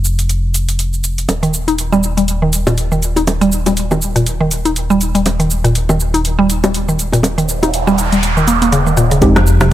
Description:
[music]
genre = afro house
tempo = 121 BPM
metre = 4/4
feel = swing 57% on 16ths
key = unclear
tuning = A4 = 441 Hz
[part]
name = round analog bass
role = bass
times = 0.0-9.7 s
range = Eb1 to F1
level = -17 LUFS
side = equal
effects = sidechain pumping
[part]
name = afro-pop drum kit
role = drums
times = 0.0-9.7 s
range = hi-hat, rim click, shaker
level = -20 LUFS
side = right 1 dB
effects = none
[part]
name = bongos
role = percussion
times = 1.3-8.0 s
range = none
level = -20 LUFS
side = right 1 dB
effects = none
[part]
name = mallet-like synth pluck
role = arpeggios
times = 1.4-9.7 s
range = Bb2 to Eb4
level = -14 LUFS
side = equal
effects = chorus, cassette tape, sidechain pumping, dub echo
[part]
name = noise sweep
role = sound effects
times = 7.4-9.2 s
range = none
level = -19 LUFS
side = right 5 dB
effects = none
[part]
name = deep mellow chord stab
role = stabs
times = 9.2-9.4 s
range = Ab3 to G4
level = -14 LUFS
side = right 1 dB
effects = chorus, sidechain pumping
[part]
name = electronic kick drum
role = drums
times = 9.2-9.3 s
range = none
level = -15 LUFS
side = equal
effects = none
[part]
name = congas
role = percussion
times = 9.2-9.7 s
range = none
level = -18 LUFS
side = left 2 dB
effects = none
[sound]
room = light reverb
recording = none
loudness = -12 LUFS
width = side -13 dB against mid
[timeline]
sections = 0.0-9.2 A section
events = noise sweep 7.4-9.2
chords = 0.0 N.C.; 9.2 Fm7

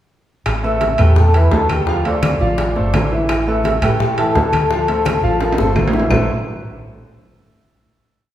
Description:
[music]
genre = latin, salsa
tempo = 170 BPM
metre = 4/4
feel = straight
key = A minor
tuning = A4 = 440 Hz
[part]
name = fingered electric bass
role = bass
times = 0.5-6.3 s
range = G1 to A2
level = -18 LUFS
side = equal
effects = none
[part]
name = bongos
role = percussion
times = 0.5-6.2 s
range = none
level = -25 LUFS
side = left 3 dB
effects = none
[part]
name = claves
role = percussion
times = 0.5-6.2 s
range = none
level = -32 LUFS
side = left 4 dB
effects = none
[part]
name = congas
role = percussion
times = 0.5-6.2 s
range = none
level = -24 LUFS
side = left 1 dB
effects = none
[part]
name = timbales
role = percussion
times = 0.5-6.2 s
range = none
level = -24 LUFS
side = right 3 dB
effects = none
[part]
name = vibraphone with medium mallets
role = melody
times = 0.6-5.7 s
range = F4 to E6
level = -19 LUFS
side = left 1 dB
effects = none
[part]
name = clear concert grand piano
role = accompaniment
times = 0.6-6.3 s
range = E3 to F5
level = -21 LUFS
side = right 1 dB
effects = none
[sound]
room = wet recital hall reverb, RT60 1.7 s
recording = recorded in a church or concert hall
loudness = -13 LUFS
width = side -12 dB against mid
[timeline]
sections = 0.5-6.1 montuno (vamp); 6.1-7.5 final chord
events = drum fill 5.4-6.1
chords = 0.5 Asus2; 1.9 Dm7; 3.3 Asus2; 4.7 Dm7; 6.1 Amadd9

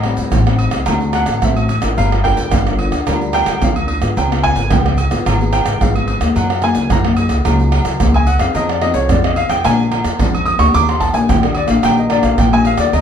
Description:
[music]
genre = samba and choro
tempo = 110 BPM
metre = 4/4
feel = straight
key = Eb major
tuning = A4 = 439 Hz
[part]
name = warm baby grand piano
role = melody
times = 0.0-13.0 s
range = Bb4 to Eb6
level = -18 LUFS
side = equal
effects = none
[part]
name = nylon-string guitar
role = accompaniment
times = 0.0-13.0 s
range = F2 to Bb4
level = -19 LUFS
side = left 4 dB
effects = none
[part]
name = upright bass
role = bass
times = 0.0-13.0 s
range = G1 to Ab2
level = -18 LUFS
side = equal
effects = none
[part]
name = pandeiro, tamborim, egg shaker, surdo and agogo bells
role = percussion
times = 0.0-13.0 s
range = none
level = -17 LUFS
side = right 2 dB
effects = none
[sound]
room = moderate small room reverb, RT60 0.5 s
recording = dark, warm production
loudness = -12 LUFS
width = side -8 dB against mid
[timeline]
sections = 0.0-13.0 A section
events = grand piano solo 0.0-13.0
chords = 0.0 Am7b5; 0.9 D7; 2.0 Gm7; 4.2 Db7; 6.4 Gb69; 8.6 Fm7; 9.7 Bb7; 10.7 Ebmaj7

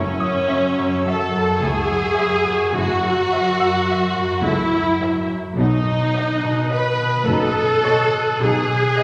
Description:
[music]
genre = cinematic, suspense film score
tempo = 106 BPM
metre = 5/4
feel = straight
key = F# dorian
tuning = A4 = 439 Hz
[part]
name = rich studio violin section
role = second line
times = 0.0-9.0 s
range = C#5 to B5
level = -30 LUFS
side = equal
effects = none
[part]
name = rich studio viola section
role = accompaniment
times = 0.0-9.0 s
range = C#4 to B4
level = -22 LUFS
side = equal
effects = none
[part]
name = warm French horn section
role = sustained chords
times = 0.0-8.6 s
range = F#3 to E4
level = -31 LUFS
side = equal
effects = none
[part]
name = concert harp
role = riff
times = 0.0-9.0 s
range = F#2 to C#4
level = -27 LUFS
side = equal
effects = none
[part]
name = rich studio cello section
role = bass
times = 0.0-8.9 s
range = C#2 to B2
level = -31 LUFS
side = equal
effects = none
[part]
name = rich studio double bass section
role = bass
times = 0.0-8.9 s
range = F#1 to C#2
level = -29 LUFS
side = equal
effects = none
[part]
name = timpani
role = percussion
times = 0.0-0.7 s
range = F#2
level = -41 LUFS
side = equal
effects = none
[part]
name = rich studio violin section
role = texture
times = 0.0-9.0 s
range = F#5 to F#6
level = -34 LUFS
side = equal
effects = none
[part]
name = bright grand piano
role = texture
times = 0.2-9.0 s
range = C#5 to E6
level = -35 LUFS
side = equal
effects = none
[part]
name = dark studio violin section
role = melody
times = 0.5-9.0 s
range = D#5 to E5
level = -34 LUFS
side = equal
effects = none
[sound]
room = wet scoring stage reverb, RT60 1.6 s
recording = none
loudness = -19 LUFS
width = mono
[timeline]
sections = 0.0-9.0 A section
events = none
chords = 0.0 F#m7; 5.6 B

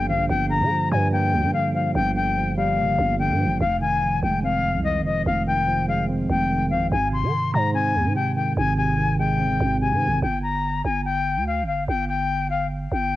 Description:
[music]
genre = hip hop, drill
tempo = 145 BPM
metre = 4/4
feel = half-time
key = unclear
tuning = A4 = 438 Hz
[part]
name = bright reedy jazz flute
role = melody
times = 0.0-13.2 s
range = Eb5 to C6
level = -23 LUFS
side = left 4 dB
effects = low-pass filter, plate reverb
[part]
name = mellow tine electric piano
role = accompaniment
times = 0.0-10.2 s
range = F2 to C4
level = -24 LUFS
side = right 2 dB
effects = low-pass filter, cassette tape
[part]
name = growling 808-style bass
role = bass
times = 0.0-13.2 s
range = F1 to Eb3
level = -26 LUFS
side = right 2 dB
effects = none
[sound]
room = moderate studio ambience, RT60 0.5 s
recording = home recording on cassette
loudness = -20 LUFS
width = side -15 dB against mid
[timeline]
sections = 0.0-10.2 A section; 10.2-13.2 B section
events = none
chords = 0.0 Gm7; 3.6 Fm7; 6.9 Ab; 10.2 N.C.

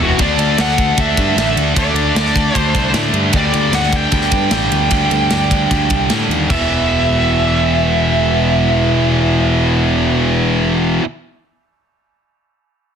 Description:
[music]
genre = heavy metal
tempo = 152 BPM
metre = 4/4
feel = straight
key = E minor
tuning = A4 = 440 Hz
[part]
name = high-gain lead guitar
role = melody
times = 0.0-10.4 s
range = F#4 to G5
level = -19 LUFS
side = right 2 dB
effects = distortion, tape echo
[part]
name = heavy high-gain guitar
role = riff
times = 0.0-11.0 s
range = E2 to D4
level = -19 LUFS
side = right 12 dB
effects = distortion
[part]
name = high-gain distorted guitar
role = riff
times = 0.0-11.0 s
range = E2 to D4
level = -18 LUFS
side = left 10 dB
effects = distortion
[part]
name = fuzz picked electric bass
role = bass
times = 0.0-11.0 s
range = E1 to A2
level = -18 LUFS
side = equal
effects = overdrive
[part]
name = tight metal drum kit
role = drums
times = 0.2-6.6 s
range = crash cymbal, kick drum, ride cymbal, snare drum, toms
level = -20 LUFS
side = equal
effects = soft clipping on kick
[sound]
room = light reverb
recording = dense, heavily limited modern master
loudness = -12 LUFS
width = side -7 dB against mid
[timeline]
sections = 0.2-6.5 A section; 6.5-9.7 B section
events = drum fill 0.0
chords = 0.2 D5; 3.3 G5; 6.5 E5

